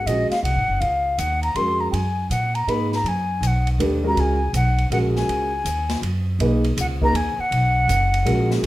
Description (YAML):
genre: modal jazz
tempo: 161 BPM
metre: 3/4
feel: swing 65% on 8ths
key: unclear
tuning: A4 = 439 Hz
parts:
  - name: mellow silver concert flute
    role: melody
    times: 0.0-8.5 s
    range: Eb5 to C6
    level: -23 LUFS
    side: left 1 dB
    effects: none
  - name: upright bass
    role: bass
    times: 0.0-8.7 s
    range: Gb1 to Bb2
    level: -22 LUFS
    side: equal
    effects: none
  - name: warm concert grand piano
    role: accompaniment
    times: 0.1-8.7 s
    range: Ab3 to Cb5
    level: -23 LUFS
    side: right 1 dB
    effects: none
  - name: open jazz drum kit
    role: drums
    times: 0.1-8.7 s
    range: hi-hat, kick drum, ride cymbal, snare drum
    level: -32 LUFS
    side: equal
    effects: none
room: light reverb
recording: none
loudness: -18 LUFS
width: side -16 dB against mid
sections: 0.0-6.4 A section; 6.4-8.7 B section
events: none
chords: 0.0 Ab13sus4; 1.9 Db13sus4; 6.4 Bmaj9